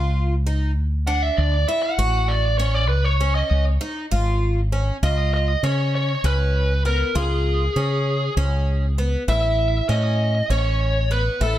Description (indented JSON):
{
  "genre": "progressive instrumental, band music in an uneven meter",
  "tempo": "197 BPM (eighths)",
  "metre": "7/8",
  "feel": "straight",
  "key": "unclear",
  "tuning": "A4 = 438 Hz",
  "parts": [
    { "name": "picked twelve-string acoustic guitar", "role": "arpeggios", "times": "0.0-11.6 s", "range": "Cb4 to F#4", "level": "-28 LUFS", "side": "equal", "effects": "none" },
    { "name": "mellow fretless electric bass", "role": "bass", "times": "0.0-11.6 s", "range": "Ab1 to Db3", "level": "-20 LUFS", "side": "equal", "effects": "none" },
    { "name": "smooth overdriven lead guitar", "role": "melody", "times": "1.1-11.6 s", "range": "Ab4 to F#5", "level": "-24 LUFS", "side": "right 1 dB", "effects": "none" }
  ],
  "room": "light reverb",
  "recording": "none",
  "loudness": "-18 LUFS",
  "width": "side -13 dB against mid",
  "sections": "0.0-5.0 A section; 5.0-11.6 B section",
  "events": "lead electric guitar solo 0.0-5.0",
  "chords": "0.0 N.C.; 0.8 D; 2.9 Db; 9.3 A",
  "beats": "0.17 0.47 | 0.77 1.08 1.38 1.69 1.99 2.29 2.60 | 2.90 3.20 3.51 3.81 4.12 4.42 4.72 | 5.03 5.33 5.63 5.94 6.24 6.55 6.85 | 7.16 7.46 7.76 8.07 8.37 8.67 8.98 | 9.28 9.59 9.89 10.19 10.50 10.80 11.11 | 11.41"
}